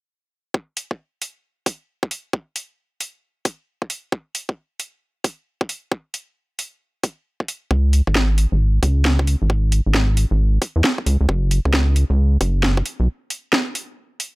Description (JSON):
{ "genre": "UK garage, two-step garage", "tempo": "134 BPM", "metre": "4/4", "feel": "swing 64% on 16ths", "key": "unclear", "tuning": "A4 = 440 Hz", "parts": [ { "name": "electronic kick drum", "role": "drums", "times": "0.5-12.8 s", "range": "none", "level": "-22 LUFS", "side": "equal", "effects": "overdrive, high-pass filter on kick" }, { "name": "garage drum kit", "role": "drums", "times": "0.8-14.3 s", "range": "hi-hat, snare drum", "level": "-21 LUFS", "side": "equal", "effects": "overdrive" }, { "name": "rubbery square bass", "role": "bass", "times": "7.7-13.1 s", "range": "F#1 to E2", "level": "-16 LUFS", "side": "equal", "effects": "none" } ], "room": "little or no reverb", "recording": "none", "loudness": "-18 LUFS", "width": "side -23 dB against mid", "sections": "0.5-14.4 A section", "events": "break 13.1-14.4", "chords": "none" }